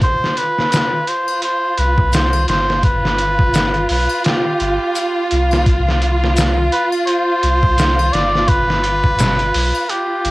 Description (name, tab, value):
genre	trip hop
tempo	85 BPM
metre	4/4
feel	swing 57% on 16ths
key	unclear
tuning	A4 = 440 Hz
part	trumpet with cup mute	melody	0.0-10.3 s	G4 to D5	-18 LUFS	equal	vintage 12-bit sampler grit, cassette tape, dub echo
part	warm studio violin section	sustained chords	0.0-10.3 s	F4	-21 LUFS	right 1 dB	cassette tape
part	trip hop sampler-style drum kit	drums	0.0-10.3 s	hi-hat, kick drum, snare drum	-18 LUFS	equal	cassette tape
part	tube shaker and triangle	percussion	0.7-9.9 s	none	-33 LUFS	left 7 dB	none
part	soft dub sub bass	bass	1.8-10.3 s	G1 to C2	-19 LUFS	equal	tube saturation
room	light reverb, small room ambience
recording	home recording on cassette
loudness	-13 LUFS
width	side -20 dB against mid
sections	0.0-10.3 A section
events	none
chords	0.0 C5; 2.8 G7; 5.7 C5; 8.5 G7